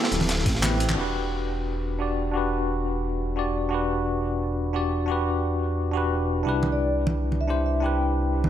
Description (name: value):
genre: liquid drum and bass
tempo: 175 BPM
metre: 4/4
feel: swing 53% on 16ths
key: E minor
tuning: A4 = 438 Hz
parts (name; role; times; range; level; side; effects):
- bell-like tine electric piano; accompaniment; 0.0-8.5 s; C4 to D5; -26 LUFS; left 1 dB; medium stereo tremolo, low-pass filter, dub echo
- crunchy breakbeat drum kit; drums; 0.0-0.9 s; hi-hat, ride cymbal, snare drum; -32 LUFS; equal; high-pass filter on cymbals, high-pass filter on hats, high-pass filter on snare, high-pass filter on room
- smooth synth bass; bass; 0.1-8.5 s; D1 to C2; -27 LUFS; equal; none
- breakbeat sampler-style drum kit; drums; 0.1-1.0 s; crash cymbal, handclaps, hi-hat, snare drum; -29 LUFS; equal; overdrive, low-pass filter on hats, low-pass filter on snare, low-pass filter on cymbals, low-pass filter on room
- congas; percussion; 0.2-1.0, 6.6-8.5 s; none; -29 LUFS; right 2 dB; none
- electronic kick drum; drums; 0.5 s; none; -25 LUFS; equal; overdrive
- vibraphone with soft mallets; melody; 6.7-8.0 s; D5 to G5; -29 LUFS; left 1 dB; vintage 12-bit sampler grit, dub echo
room: moderate lush hall reverb, RT60 1.7 s, small room ambience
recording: none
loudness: -23 LUFS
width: side -10 dB against mid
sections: 1.0-8.5 A section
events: kick drops out 0.6-1.0; drum fill 0.6-1.0; band accent 0.9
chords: 0.0 D7sus4; 1.0 Em7; 6.5 Cmaj7